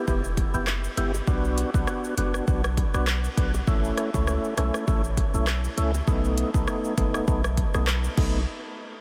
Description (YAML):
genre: dancehall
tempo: 100 BPM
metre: 4/4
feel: swing 56% on 16ths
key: unclear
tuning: A4 = 442 Hz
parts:
  - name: percussive tonewheel organ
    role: accompaniment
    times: 0.0-8.4 s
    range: A3 to G4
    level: -31 LUFS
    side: equal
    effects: overdrive, chorus vibrato, slow rotary speaker, low-pass filter
  - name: warm 808-style bass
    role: bass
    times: 0.1-8.5 s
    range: E1 to C#2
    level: -29 LUFS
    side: equal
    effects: none
  - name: afro-pop drum kit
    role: drums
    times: 0.1-8.3 s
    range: crash cymbal, handclaps, hi-hat, kick drum, rim click, shaker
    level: -29 LUFS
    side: equal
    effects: none
  - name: bongos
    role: percussion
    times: 0.1-8.5 s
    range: none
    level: -43 LUFS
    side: equal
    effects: none
room: moderate huge ambient reverb, RT60 7.4 s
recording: dreamy mix soaked in reverb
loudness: -25 LUFS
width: mono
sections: 0.0-8.5 A section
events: filter sweep on tonewheel organ 0.0-8.5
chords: 0.0 Em; 1.3 Bm; 3.7 A; 6.1 B7; 8.5 N.C.